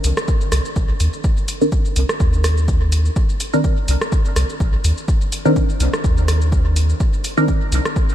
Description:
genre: dub techno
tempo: 125 BPM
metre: 4/4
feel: swing 55% on 16ths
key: C minor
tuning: A4 = 440 Hz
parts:
  - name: soft dub sub bass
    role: bass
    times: 0.0-7.8 s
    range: Bb1 to Eb2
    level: -16 LUFS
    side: equal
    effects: sidechain pumping
  - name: punchy analog drum machine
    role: drums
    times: 0.0-8.1 s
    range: hi-hat, rim click, shaker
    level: -25 LUFS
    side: equal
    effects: dub echo
  - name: electronic kick drum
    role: drums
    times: 0.3-8.1 s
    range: none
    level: -18 LUFS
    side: equal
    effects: none
  - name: filtered dub chord stab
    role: stabs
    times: 1.6-7.6 s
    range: Eb3 to Bb4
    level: -22 LUFS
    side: equal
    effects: chorus, phaser, sidechain pumping, dub echo
room: light reverb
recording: none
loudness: -15 LUFS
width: side -11 dB against mid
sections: 0.0-8.1 A section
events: none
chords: 0.0 Cm9

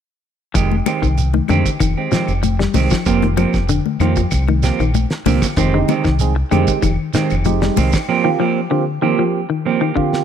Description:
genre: afrobeat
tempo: 96 BPM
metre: 4/4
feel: straight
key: F dorian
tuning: A4 = 442 Hz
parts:
  - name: semi-hollow electric guitar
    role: arpeggios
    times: 0.5-10.2 s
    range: D3 to G3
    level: -21 LUFS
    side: left 8 dB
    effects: none
  - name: clean electric guitar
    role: stabs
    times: 0.6-10.0 s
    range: Eb3 to G4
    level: -20 LUFS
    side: right 8 dB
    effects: spring reverb
  - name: deep dub fingered electric bass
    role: bass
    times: 0.6-8.0 s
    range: F1 to F2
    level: -18 LUFS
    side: equal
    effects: none
  - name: damped 70s drum kit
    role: drums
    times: 0.6-10.2 s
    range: hi-hat, kick drum, snare drum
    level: -22 LUFS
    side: equal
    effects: none
  - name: shekere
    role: percussion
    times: 0.6-8.1 s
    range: none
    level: -26 LUFS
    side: right 6 dB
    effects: none
  - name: congas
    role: percussion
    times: 0.7-7.9 s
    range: none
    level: -21 LUFS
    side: left 18 dB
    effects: none
  - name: claves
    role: percussion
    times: 0.9-8.1 s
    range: none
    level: -34 LUFS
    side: left 7 dB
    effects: none
  - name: barky tine electric piano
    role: accompaniment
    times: 5.7-10.2 s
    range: Eb3 to Ab4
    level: -21 LUFS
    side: right 11 dB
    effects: phaser
room: small room ambience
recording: dry, close 1970s-style studio recording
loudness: -14 LUFS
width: side -8 dB against mid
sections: 0.6-10.2 A section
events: drum fill 10.0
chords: 0.6 Fm9; 3.1 Eb69/F; 5.6 Fm9; 8.1 Eb69

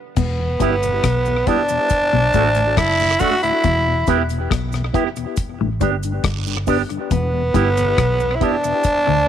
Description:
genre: roots reggae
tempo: 69 BPM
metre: 4/4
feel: straight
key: E minor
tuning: A4 = 438 Hz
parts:
  - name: growling tenor saxophone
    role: melody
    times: 0.2-9.3 s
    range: B3 to F#4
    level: -18 LUFS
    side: right 1 dB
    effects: tape echo
  - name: semi-hollow electric guitar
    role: riff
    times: 0.2-9.2 s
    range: E2 to D3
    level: -25 LUFS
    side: left 7 dB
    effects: phaser
  - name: vintage muted fingered electric bass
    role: bass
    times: 0.2-9.3 s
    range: E1 to D2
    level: -22 LUFS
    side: equal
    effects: none
  - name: deep reggae drum kit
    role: drums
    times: 0.2-9.1 s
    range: crash cymbal, hi-hat, kick drum, rim click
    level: -23 LUFS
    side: left 2 dB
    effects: tape echo
  - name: cabasa and guiro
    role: percussion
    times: 0.2-9.1 s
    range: none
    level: -32 LUFS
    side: right 13 dB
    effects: none
  - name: mellow tonewheel organ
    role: accompaniment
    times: 0.4-9.2 s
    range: D2 to G4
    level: -27 LUFS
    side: left 9 dB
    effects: slow rotary speaker, tape echo
  - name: electric guitar with an envelope filter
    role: accompaniment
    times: 0.6-8.6 s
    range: A3 to G4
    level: -24 LUFS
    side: right 12 dB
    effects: tape echo
room: light reverb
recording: 1960s-style stereo with parts hard left and right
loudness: -16 LUFS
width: side -10 dB against mid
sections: 0.2-9.3 A section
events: stop 0.0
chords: 0.2 Em; 1.9 D; 3.6 Em; 5.4 G; 7.1 Em

